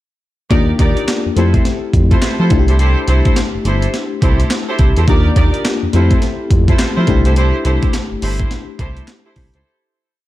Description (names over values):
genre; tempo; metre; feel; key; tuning
R&B, new jack swing; 105 BPM; 4/4; swing 62% on 16ths; C major; A4 = 439 Hz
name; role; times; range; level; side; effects
FM electric piano with tremolo; accompaniment; 0.5-9.7 s; A3 to G4; -20 LUFS; left 5 dB; none
muted studio string section; stabs; 0.5-9.7 s; Eb4 to D5; -21 LUFS; right 2 dB; digital delay
smooth synth bass; bass; 0.5-9.6 s; G1 to F3; -14 LUFS; equal; none
breakbeat sampler-style drum kit; drums; 0.5-9.6 s; handclaps, hi-hat, kick drum, snare drum; -16 LUFS; equal; overdrive
room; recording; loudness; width
digital ambience; none; -12 LUFS; side -15 dB against mid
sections
0.5-9.6 verse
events
fade-out 7.4-9.6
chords
0.5 Ebmaj7; 1.4 Fmaj7; 2.5 C6; 5.1 Ebmaj7; 5.9 Fmaj7; 7.1 C6